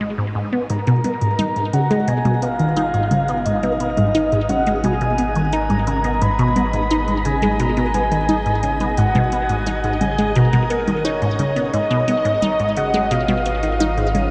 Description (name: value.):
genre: ambient, sequencer-driven space music.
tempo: 87 BPM.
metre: 4/4.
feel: straight.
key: G# dorian.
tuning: A4 = 443 Hz.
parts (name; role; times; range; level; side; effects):
resonant blip pluck; riff; 0.0-14.3 s; G#2 to D#4; -22 LUFS; equal; phaser, delay.
round analog bass; bass; 0.0-14.3 s; G#1; -30 LUFS; equal; none.
soft octave-layered synth lead; melody; 0.7-14.3 s; A#4 to B5; -24 LUFS; equal; chorus, delay.
booming analog drum machine; percussion; 0.7-14.3 s; hi-hat, toms; -29 LUFS; equal; none.
bubbling stepped-filter texture; texture; 1.3-14.3 s; D#5; -34 LUFS; equal; chorus, built-in reverb.
room: wet shimmer reverb, RT60 7.5 s.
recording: dark, warm production.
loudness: -19 LUFS.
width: mono.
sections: 0.0-14.3 A section.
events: fade-in on analog synth bass 0.0-14.3.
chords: 0.0 G#madd9.